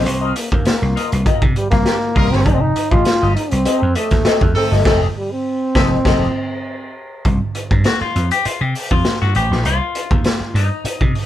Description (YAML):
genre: funk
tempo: 100 BPM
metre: 4/4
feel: straight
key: C dorian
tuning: A4 = 440 Hz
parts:
  - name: warm trombone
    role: melody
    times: 0.0-7.0 s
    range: G3 to F4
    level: -20 LUFS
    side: equal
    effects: none
  - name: clean electric guitar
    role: accompaniment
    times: 0.0-11.3 s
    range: Eb4 to F5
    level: -22 LUFS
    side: left 7 dB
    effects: wah
  - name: vintage slap bass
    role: bass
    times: 0.0-11.1 s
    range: F1 to C3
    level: -18 LUFS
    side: equal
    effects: none
  - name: raw garage drum kit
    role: drums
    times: 0.1-11.3 s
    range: crash cymbal, hi-hat, kick drum, snare drum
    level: -18 LUFS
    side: equal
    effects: none
  - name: warm horn section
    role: second line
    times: 1.9-6.2 s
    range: Eb3 to Bb4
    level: -22 LUFS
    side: equal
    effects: none
room: light reverb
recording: band playing live in one room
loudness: -14 LUFS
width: side -12 dB against mid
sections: 0.0-7.3 A section; 7.3-11.3 B section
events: band accent 4.9-7.3; clean electric guitar solo 7.3-11.3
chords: 0.0 Cm11; 2.5 F9; 7.3 Cm